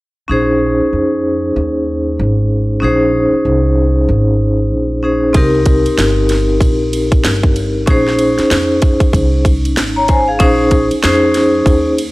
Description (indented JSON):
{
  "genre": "hip hop, jazz-hop",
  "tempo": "95 BPM",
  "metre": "4/4",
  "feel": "swing 60% on 16ths",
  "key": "Bb dorian",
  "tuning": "A4 = 442 Hz",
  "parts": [
    { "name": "vibraphone with medium hard mallets", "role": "accompaniment", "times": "0.3-11.9 s", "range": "C4 to Bb5", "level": "-13 LUFS", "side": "equal", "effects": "none" },
    { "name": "upright bass", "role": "bass", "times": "0.3-12.1 s", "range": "G1 to F2", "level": "-17 LUFS", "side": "equal", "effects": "none" },
    { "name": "garage drum kit", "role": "drums", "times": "5.3-12.1 s", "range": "hi-hat, kick drum, ride cymbal, snare drum", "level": "-15 LUFS", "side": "equal", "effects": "none" }
  ],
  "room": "studio reverb",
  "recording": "dry, gritty hardware recording, transformer saturation",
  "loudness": "-11 LUFS",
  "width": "side -20 dB against mid",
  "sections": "0.3-10.4 A section; 10.4-12.1 B section",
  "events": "none",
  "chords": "0.3 Bbm11; 5.3 Cm7; 7.9 Bbm11"
}